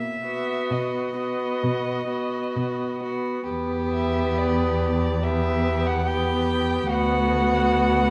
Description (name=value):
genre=classical, slow romantic movement for string quartet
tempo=62-74 BPM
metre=4/4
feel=rubato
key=E minor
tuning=A4 = 441 Hz
part: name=rich violin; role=melody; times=0.0-8.1 s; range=D5 to G5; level=-31 LUFS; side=equal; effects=none
part: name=warm cello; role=bass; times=0.0-8.1 s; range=D2 to B2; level=-28 LUFS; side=equal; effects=none
part: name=rich violin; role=second line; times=0.3-8.1 s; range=F#4 to G4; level=-31 LUFS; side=equal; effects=none
part: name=warm viola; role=accompaniment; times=0.3-8.1 s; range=B3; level=-28 LUFS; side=equal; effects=none
room=moderate recital hall reverb, RT60 1.4 s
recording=dark, warm production, vinyl crackle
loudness=-24 LUFS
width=mono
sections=0.0-8.1 A section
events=none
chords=0.0 B; 3.5 Em; 6.9 Bm/D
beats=0.72 1.64 2.56 | 3.49 4.39 5.24 6.08 | 6.91 7.75